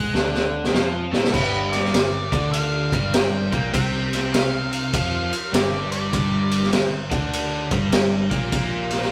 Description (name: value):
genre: blues rock power trio and southern rock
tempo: 100 BPM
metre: 4/4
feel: swing 64% on 8ths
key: unclear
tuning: A4 = 440 Hz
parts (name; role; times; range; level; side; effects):
- octave-fuzz lead guitar; melody; 0.0-6.7 s; B4 to G5; -32 LUFS; equal; distortion
- crunchy overdriven guitar; riff; 0.0-9.1 s; G2 to A4; -27 LUFS; equal; none
- vintage muted picked electric bass; bass; 0.0-9.1 s; G1 to A2; -31 LUFS; equal; none
- raw garage drum kit; drums; 0.1-9.1 s; crash cymbal, kick drum, ride cymbal, snare drum; -24 LUFS; equal; none
room: moderate stone room reverb, RT60 1.0 s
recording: rough rehearsal-room recording, tube saturation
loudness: -22 LUFS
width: mono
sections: 0.0-1.3 A section; 1.3-9.1 A section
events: drum fill 0.1-1.3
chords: 0.0 D; 1.3 G5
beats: 0.14 0.74 | 1.34 1.94 2.54 3.14 | 3.74 4.34 4.94 5.54 | 6.13 6.73 7.33 7.93 | 8.53